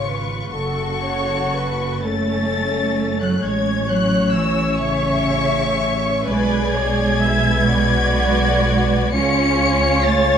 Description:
classical, slow romantic movement for string orchestra; 42 BPM (dotted quarters); 6/8; uneven beats, rubato; F# minor; A4 = 441 Hz
warm studio violin section; melody; 0.0-10.4 s; C#6 to C#7; -23 LUFS; left 3 dB
warm studio violin section; second line; 0.0-10.4 s; C#4 to E5; -24 LUFS; left 4 dB
warm studio viola section; accompaniment; 0.0-10.4 s; A4 to E5; -23 LUFS; right 1 dB
rich studio double bass section; bass; 0.0-10.4 s; F#1 to C#2; -23 LUFS; right 1 dB
warm studio cello section; bass; 0.0-10.4 s; C#3 to C#4; -22 LUFS; right 3 dB
moderate scoring stage reverb, RT60 1.8 s; dark, warm production; -16 LUFS; side -8 dB against mid
0.0-10.4 A section
0.0 C#7/G#; 0.5 F#m; 3.4 F#m/A; 6.3 G#dim/B; 9.1 C#

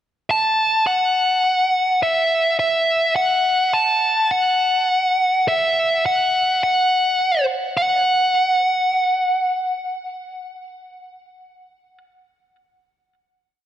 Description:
post-rock; 104 BPM; 3/4; straight; F# minor; A4 = 440 Hz
bluesy overdriven lead guitar; solo; 0.3-12.0 s; E5 to A5; -16 LUFS; equal; distortion, digital delay
moderate concert hall reverb, RT60 2.4 s; -16 LUFS; side -11 dB against mid
0.0-0.9 pickup bar; 0.9-7.8 A section; 7.8-11.2 final note

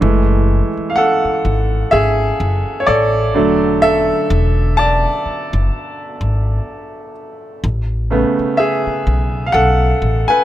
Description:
contemporary R&B; 63 BPM; 4/4; swing 58% on 16ths; A4 = 440 Hz
clear grand piano; accompaniment; 0.0-10.4 s; C#3 to A5; -15 LUFS; equal
upright bass; bass; 0.0-10.2 s; E1 to B1; -16 LUFS; equal
studio ambience; -13 LUFS; side -13 dB against mid
0.0-10.4 A section
grand piano solo 0.0-10.4
0.0 F#m9; 3.3 E7sus4; 7.6 Amaj9

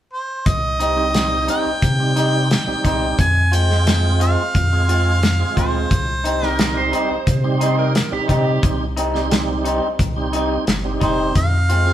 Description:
straight-eighth soul blues; 88 BPM; 4/4; straight; C minor; A4 = 445 Hz
bright harmonica; melody; 0.1-6.9, 11.0-11.9 s; C5 to Ab5; -22 LUFS; equal; overdrive
warm sub bass; bass; 0.5-11.9 s; F1 to C3; -20 LUFS; equal
warm soul drum kit; drums; 0.5-11.9 s; hi-hat, kick drum, snare drum; -21 LUFS; equal
electric guitar through a small old amp; stabs; 0.8-11.9 s; G3 to F4; -24 LUFS; left 1 dB
tonewheel organ; accompaniment; 1.0-11.9 s; G3 to Ab4; -24 LUFS; right 4 dB; slow rotary speaker, overdrive, chorus vibrato
overdriven slide guitar; second line; 6.6-8.6 s; G4 to C5; -25 LUFS; right 5 dB
moderate stone room reverb, RT60 1.4 s; band playing live in one room; -16 LUFS; side -11 dB against mid
0.5-11.9 A section
0.5 Cm; 3.2 Fm; 5.9 Cm; 11.4 Fm

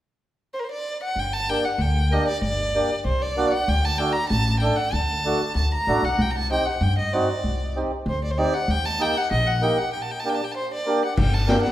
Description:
klezmer; 96 BPM; 2/4; straight; G harmonic minor; A4 = 443 Hz
clear violin; melody; 0.5-11.7 s; Bb4 to Bb5; -25 LUFS; equal
upright bass; bass; 1.2-11.5 s; G1 to G2; -24 LUFS; equal
mellow accordion; accompaniment; 1.5-11.6 s; A3 to A4; -25 LUFS; right 1 dB
street-band drum kit; drums; 11.2-11.7 s; crash cymbal, kick drum, snare drum; -22 LUFS; left 2 dB
wet recital hall reverb, RT60 1.7 s; recorded in a church or concert hall; -20 LUFS; side -13 dB against mid
0.0-1.2 A section; 1.2-11.2 B section
break 9.9-11.2
0.0 N.C.; 1.2 Gm; 3.7 D; 6.2 Cm; 8.7 Eb; 9.9 Gm

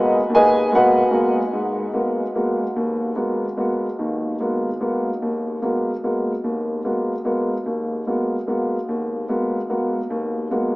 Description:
jazz; 147 BPM; 3/4; swing 66% on 8ths; G# minor; A4 = 440 Hz
dark upright piano; solo; 0.0-10.8 s; D#2 to G#5; -19 LUFS; equal
wet cathedral reverb, RT60 6.5 s; recorded in a church or concert hall, small speaker sound; -19 LUFS; side -20 dB against mid
0.0-1.5 A section; 1.5-10.8 B section
0.0 G#m9

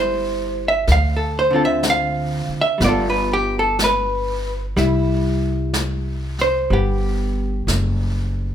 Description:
jazz ballad; 62 BPM; 4/4; swing 66% on 8ths; C major; A4 = 440 Hz
vintage hollow-body jazz guitar; accompaniment; 0.0-8.5 s; D3 to F5; -19 LUFS; equal
upright bass; bass; 0.0-8.5 s; F#1 to D2; -22 LUFS; equal
jazz brush drum kit; drums; 0.9-8.5 s; brushed snare drum, hi-hat, snare drum; -27 LUFS; equal
light reverb; minimal, uncompressed stereo recording; -17 LUFS; side -9 dB against mid
0.0-4.8 A section; 4.8-8.5 B section
0.0 C; 0.9 Dm7; 2.8 G9; 4.8 Cmaj7

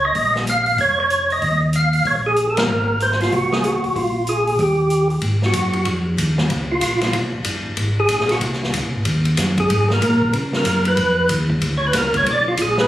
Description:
soul jazz organ trio; 188 BPM; 4/4; swing 63% on 8ths; Ab mixolydian; A4 = 440 Hz
percussive tonewheel organ; melody; 0.0-12.9 s; F4 to F5; -18 LUFS; right 1 dB; slow rotary speaker, overdrive, chorus vibrato, plate reverb
mellow tonewheel organ; bass; 0.0-12.9 s; F1 to Db3; -21 LUFS; equal; slow rotary speaker
swinging big-band drum kit; drums; 0.1-12.8 s; hi-hat, kick drum, ride cymbal, snare drum; -23 LUFS; left 1 dB
moderate club reverb, RT60 0.8 s; recorded on a phone in the room, studio reverb; -16 LUFS; side -13 dB against mid
0.0-5.2 A section; 5.2-12.9 B section
band accent 2.5; tonewheel organ solo 5.2-12.9
0.2 Bbm; 1.4 Ebsus2; 2.7 Ab9; 4.0 Bb5; 4.6 Eb; 5.2 Ab5; 6.5 Db7; 7.8 Abadd9; 9.1 Ebm; 9.7 Absus2; 10.3 Db9; 11.6 Bb7b9

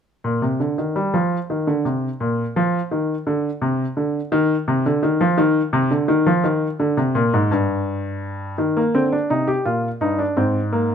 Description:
classical, baroque-style 3-part fugue for grand piano; 56 BPM (dotted quarters); 12/8; straight; Eb major; A4 = 440 Hz
warm baby grand piano; solo; 0.2-10.9 s; G2 to G4; -18 LUFS; equal
light reverb; close, detailed microphones; -18 LUFS; side -8 dB against mid
0.1-8.6 A section; 8.6-10.9 B section
0.1 N.C.; 8.6 Eb

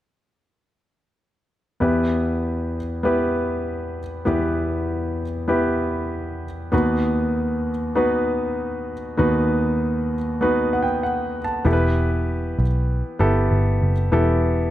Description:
pop; 97 BPM; 4/4; straight; E harmonic minor; A4 = 441 Hz
warm concert grand piano; accompaniment; 1.8-14.7 s; D#2 to A5; -20 LUFS; equal
vintage muted picked electric bass; bass; 11.7-14.7 s; E1 to B1; -20 LUFS; equal
moderate scoring stage reverb, RT60 1.7 s, small room ambience; -19 LUFS; side -13 dB against mid
1.8-11.7 A section; 11.7-14.7 B section
grand piano fill 10.4-11.7
1.8 Em; 6.7 B/D#; 11.7 Em

